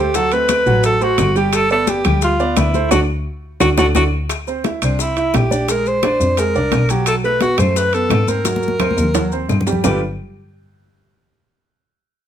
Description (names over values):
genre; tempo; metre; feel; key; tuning
Afro-Cuban jazz; 173 BPM; 4/4; straight; unclear; A4 = 439 Hz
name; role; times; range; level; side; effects
breathy alto saxophone; melody; 0.0-10.0 s; D4 to C5; -18 LUFS; equal; plate reverb
warm upright piano; accompaniment; 0.0-10.0 s; F#3 to G5; -21 LUFS; right 5 dB; none
dark double bass; bass; 0.0-10.0 s; G1 to Ab2; -20 LUFS; left 1 dB; none
bongos; percussion; 0.1-9.9 s; none; -27 LUFS; left 9 dB; none
congas; percussion; 0.1-9.9 s; none; -25 LUFS; left 4 dB; none
maracas; percussion; 0.1-9.9 s; none; -29 LUFS; left 8 dB; none
timbales; percussion; 0.1-9.9 s; none; -24 LUFS; right 8 dB; none
claves; percussion; 0.5-9.9 s; none; -29 LUFS; left 10 dB; none
room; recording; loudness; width
light reverb; none; -14 LUFS; side -9 dB against mid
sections
0.0-4.3 A section; 4.3-9.8 B section; 9.8-11.2 C section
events
band accent 2.9-4.3; drum fill 3.3-4.3, 8.5-9.8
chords
0.1 D7; 1.5 G9; 2.9 D; 4.3 C9; 5.7 Bb9; 7.1 B5; 8.5 Ab9; 9.8 G9